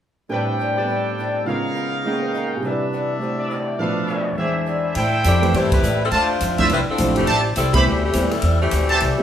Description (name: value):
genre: jazz, big band swing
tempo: 207 BPM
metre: 4/4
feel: swing 62% on 8ths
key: A minor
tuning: A4 = 440 Hz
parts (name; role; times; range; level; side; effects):
- picked old ladder-braced acoustic guitar; accompaniment; 0.3-9.2 s; A2 to A#4; -28 LUFS; left 3 dB; none
- warm grand piano; accompaniment; 0.3-9.2 s; E2 to G#5; -23 LUFS; right 1 dB; none
- bright trumpet section; stabs; 0.3-9.0 s; D4 to C#6; -23 LUFS; right 1 dB; none
- swinging big-band drum kit; drums; 4.9-9.1 s; hi-hat, kick drum, ride cymbal; -26 LUFS; equal; none
- upright bass; bass; 5.0-9.2 s; F1 to A2; -21 LUFS; equal; none
- bright saxophone section; melody; 5.3-9.2 s; E3 to D5; -22 LUFS; left 3 dB; none
room: wet large studio reverb, RT60 0.9 s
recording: band playing live in one room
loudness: -17 LUFS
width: side -9 dB against mid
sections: 0.3-5.0 A section; 5.0-9.2 B section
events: band accent 5.7, 7.7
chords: 0.3 Am11; 1.5 C#13; 2.6 Cmaj9; 3.8 Bm7b5; 4.4 E7b13; 5.0 Am7; 6.1 Dm7; 7.3 Am7